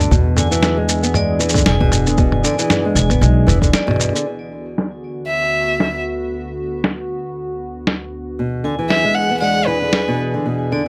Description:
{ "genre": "folktronica", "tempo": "116 BPM", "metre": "4/4", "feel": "swing 56% on 16ths", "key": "D lydian", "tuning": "A4 = 440 Hz", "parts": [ { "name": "vibraphone with hard mallets", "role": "second line", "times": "0.0-4.3, 8.7-10.9 s", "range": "D5 to A5", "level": "-27 LUFS", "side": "equal", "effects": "delay" }, { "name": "warbly tape-like pad", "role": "sustained chords", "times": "0.0-10.9 s", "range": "D2 to G#4", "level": "-27 LUFS", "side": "equal", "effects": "chorus, built-in reverb" }, { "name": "nylon-string guitar", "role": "arpeggios", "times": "0.0-4.2, 8.4-10.8 s", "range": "B2 to B3", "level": "-23 LUFS", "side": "equal", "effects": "delay" }, { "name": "upright bass", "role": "bass", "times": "0.0-3.7 s", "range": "E1 to E2", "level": "-19 LUFS", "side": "equal", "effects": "none" }, { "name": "lo-fi sampler-style drum kit", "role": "drums", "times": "0.0-10.1 s", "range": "shaker, snare drum, toms", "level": "-21 LUFS", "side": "equal", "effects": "low-pass filter on perc, low-pass filter on toms, low-pass filter on snare" }, { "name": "electronic kick drum", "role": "drums", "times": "0.1-3.7 s", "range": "none", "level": "-19 LUFS", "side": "equal", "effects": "none" }, { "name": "dark violin", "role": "melody", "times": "5.3-10.2 s", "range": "B4 to F#5", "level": "-21 LUFS", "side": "equal", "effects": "delay" } ], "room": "moderate studio reverb, RT60 0.5 s", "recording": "none", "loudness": "-17 LUFS", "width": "mono", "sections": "0.0-4.3 A section; 4.3-10.9 B section", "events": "break 3.7-4.3; filter sweep on drum 4.3-10.9", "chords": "0.1 E7; 4.3 D6; 8.4 E7", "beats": "| 0.11 0.63 1.15 1.66 | 2.18 2.70 3.22 3.73 | 4.25 4.77 5.29 5.80 | 6.32 6.84 7.35 7.87 | 8.39 8.91 9.42 9.94 | 10.46" }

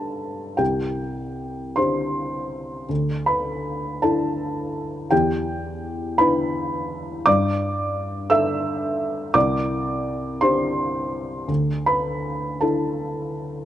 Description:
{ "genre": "neoclassical minimalist piano", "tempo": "49-59 BPM (dotted quarters)", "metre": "6/8", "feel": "rubato", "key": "G major", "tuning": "A4 = 442 Hz", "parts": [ { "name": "felt-muted upright piano", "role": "solo", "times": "0.0-13.7 s", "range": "C2 to E6", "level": "-21 LUFS", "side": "equal", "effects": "none" } ], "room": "light reverb", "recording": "rough home demo mix, nothing above 10.9 kHz", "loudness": "-21 LUFS", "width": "side -12 dB against mid", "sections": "0.0-13.7 A section", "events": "none", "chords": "0.0 Gadd9; 0.6 Csus2; 2.9 Dsus2; 5.1 Em7; 7.3 Gsus2; 9.3 Csus2; 11.5 Dsus2", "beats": "| 0.60 1.79 | 2.90 4.02 | 5.12 6.19 | 7.27 8.31 | 9.35 10.41 | 11.48 12.61" }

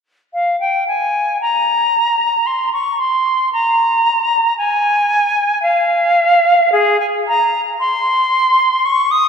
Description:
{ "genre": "classical, baroque-style fantasia for unaccompanied flute", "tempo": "57 BPM", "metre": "3/4", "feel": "rubato", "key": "unclear", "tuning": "A4 = 438 Hz", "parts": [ { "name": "silver concert flute", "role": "solo", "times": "0.3-9.3 s", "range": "Ab4 to Eb6", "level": "-12 LUFS", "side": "equal", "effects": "none" } ], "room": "wet church reverb, RT60 2.9 s", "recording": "none", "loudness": "-13 LUFS", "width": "side -6 dB against mid", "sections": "0.3-9.3 A section", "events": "none", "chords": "none", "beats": "| 0.33 1.42 2.47 | 3.53 4.57 5.63 | 6.72 7.80 8.85" }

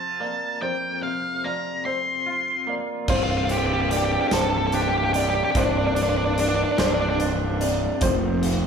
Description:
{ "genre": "post-rock", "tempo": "49 BPM (dotted quarters)", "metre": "6/8", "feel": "straight", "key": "unclear", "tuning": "A4 = 443 Hz", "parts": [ { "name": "octave-fuzz lead guitar", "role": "melody", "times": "0.0-7.2 s", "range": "D4 to C6", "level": "-24 LUFS", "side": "right 1 dB", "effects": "distortion" }, { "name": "felt-muted upright piano", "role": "arpeggios", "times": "0.0-8.7 s", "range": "C5 to D5", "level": "-30 LUFS", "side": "equal", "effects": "none" }, { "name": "twangy electric guitar", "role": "arpeggios", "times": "0.0-8.7 s", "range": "C2 to F4", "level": "-28 LUFS", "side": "left 2 dB", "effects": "tremolo" }, { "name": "pedal steel guitar", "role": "sustained chords", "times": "3.1-8.7 s", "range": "D3 to C4", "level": "-36 LUFS", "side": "right 3 dB", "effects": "none" }, { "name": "fuzz fingered electric bass", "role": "bass", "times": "3.1-8.7 s", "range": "C1 to F1", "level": "-26 LUFS", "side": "right 1 dB", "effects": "overdrive" }, { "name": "huge arena drum kit", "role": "drums", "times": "3.1-8.6 s", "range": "crash cymbal, hi-hat, kick drum, snare drum", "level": "-28 LUFS", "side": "equal", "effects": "none" } ], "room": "wet large studio reverb, RT60 1.3 s", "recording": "band playing live in one room", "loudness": "-21 LUFS", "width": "side -6 dB against mid", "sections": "0.0-3.1 A section; 3.1-8.7 B section", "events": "none", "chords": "0.0 Fsus4; 3.1 Csus2; 8.0 Fsus4", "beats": "| 0.62 1.86 | 3.10 4.33 | 5.56 6.80 | 8.03" }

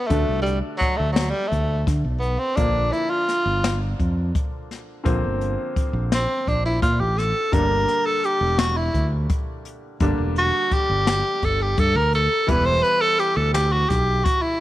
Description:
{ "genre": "progressive instrumental, band music in an uneven meter", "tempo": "170 BPM (eighths)", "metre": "7/8", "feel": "straight", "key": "unclear", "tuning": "A4 = 440 Hz", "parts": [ { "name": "clear tenor saxophone", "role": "melody", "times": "0.0-14.6 s", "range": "F#3 to C5", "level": "-21 LUFS", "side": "equal", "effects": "none" }, { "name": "clear baby grand piano", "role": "accompaniment", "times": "0.0-14.6 s", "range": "D3 to F#4", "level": "-30 LUFS", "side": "left 1 dB", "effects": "none" }, { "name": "fingered electric bass", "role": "bass", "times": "0.1-14.2 s", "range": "E1 to D3", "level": "-23 LUFS", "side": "equal", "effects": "none" }, { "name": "jazz brush drum kit", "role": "drums", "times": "0.1-14.4 s", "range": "hi-hat, kick drum, snare drum", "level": "-25 LUFS", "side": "left 1 dB", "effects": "none" } ], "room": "light reverb", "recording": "1960s-style stereo, tape saturation", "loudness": "-19 LUFS", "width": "side -14 dB against mid", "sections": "0.0-14.6 A section", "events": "tenor saxophone solo 0.0-14.6", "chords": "0.0 D; 2.6 Bb; 7.5 Gm; 12.5 Em", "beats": "| 0.10 0.46 0.81 1.16 1.52 1.87 2.23 | 2.58 2.93 3.29 3.64 3.99 4.35 4.70 | 5.05 5.41 5.76 6.12 6.47 6.82 7.18 | 7.53 7.88 8.24 8.59 8.95 9.30 9.65 | 10.01 10.36 10.71 11.07 11.42 11.78 12.13 | 12.48 12.84 13.19 13.54 13.90 14.25" }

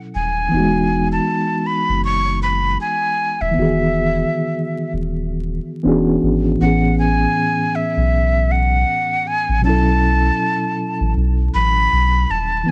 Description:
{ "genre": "lo-fi hip hop", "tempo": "79 BPM", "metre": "4/4", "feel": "swing 58% on 16ths", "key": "E major", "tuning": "A4 = 440 Hz", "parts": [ { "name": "mellow reed electric piano", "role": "accompaniment", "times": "0.0-12.7 s", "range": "A2 to A4", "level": "-22 LUFS", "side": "equal", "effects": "fast tremolo, low-pass filter" }, { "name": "breathy bright jazz flute", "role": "melody", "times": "0.1-12.7 s", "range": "E5 to C#6", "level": "-22 LUFS", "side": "equal", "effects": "low-pass filter" }, { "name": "soft dub sub bass", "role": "bass", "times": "0.2-12.6 s", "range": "D#1 to B1", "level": "-22 LUFS", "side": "equal", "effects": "none" } ], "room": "moderate studio reverb, RT60 0.5 s", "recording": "vinyl crackle", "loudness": "-18 LUFS", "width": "mono", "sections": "0.0-12.7 A section", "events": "none", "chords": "0.0 B9sus4; 0.5 Emaj7; 5.8 E13; 6.6 Amaj9; 9.6 B9sus4", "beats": "| 0.52 1.28 2.04 2.80 | 3.56 4.32 5.08 5.84 | 6.60 7.36 8.12 8.88 | 9.64 10.40 11.15 11.91 | 12.67" }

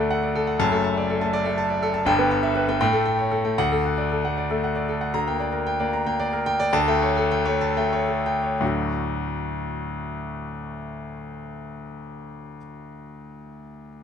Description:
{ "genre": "classical, virtuoso piano study", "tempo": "58-82 BPM (dotted quarters)", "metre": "6/8", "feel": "rubato", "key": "D major", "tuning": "A4 = 442 Hz", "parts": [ { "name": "warm concert grand piano", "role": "solo", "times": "0.0-14.0 s", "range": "F#1 to Bb5", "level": "-22 LUFS", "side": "left 1 dB", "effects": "none" } ], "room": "little or no reverb", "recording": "close, detailed microphones", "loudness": "-21 LUFS", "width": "side -8 dB against mid", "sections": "0.0-5.1 A section; 5.1-8.6 B section; 8.6-12.6 C section", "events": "slowing down 4.4-8.6", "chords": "0.0 D; 0.6 D/F#; 2.1 Em/G; 2.8 A7; 3.6 D; 5.1 Gm/D; 6.7 A7/D; 8.6 D", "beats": "| 0.60 1.34 | 2.07 2.81 | 3.58 4.37 | 5.15 5.93 | 6.74 7.61 | 8.61 9.61 | 10.62 11.63" }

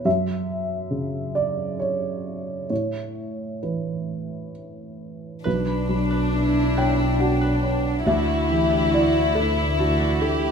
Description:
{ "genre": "neoclassical piano and strings", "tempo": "67 BPM", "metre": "3/4", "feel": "uneven beats, rubato", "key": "unclear", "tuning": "A4 = 440 Hz", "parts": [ { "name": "dark upright piano", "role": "accompaniment", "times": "0.0-10.5 s", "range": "B1 to G5", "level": "-24 LUFS", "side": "right 2 dB", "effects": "none" }, { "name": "concert harp", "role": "arpeggios", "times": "5.4-10.5 s", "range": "D4 to B5", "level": "-33 LUFS", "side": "left 1 dB", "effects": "none" }, { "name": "warm chamber violin section", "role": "melody", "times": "5.5-10.5 s", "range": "D4 to E4", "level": "-23 LUFS", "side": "left 3 dB", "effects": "none" }, { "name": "dark double bass", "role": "bass", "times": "5.5-10.5 s", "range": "B1 to D2", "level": "-25 LUFS", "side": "equal", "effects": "none" }, { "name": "warm cello", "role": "second line", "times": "6.3-10.5 s", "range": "D4 to G4", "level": "-30 LUFS", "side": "right 6 dB", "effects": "none" } ], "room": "moderate large studio reverb, RT60 1.2 s", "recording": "minimal, uncompressed stereo recording", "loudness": "-20 LUFS", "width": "side -6 dB against mid", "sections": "0.0-5.5 A section; 5.5-10.5 B section", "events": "none", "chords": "0.1 F#5; 2.7 Aadd9; 5.5 Bmadd9; 8.1 Dadd9", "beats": "| 0.05 0.91 1.78 | 2.70 3.63 4.55 | 5.45 6.34 7.21 | 8.07 8.93 9.79" }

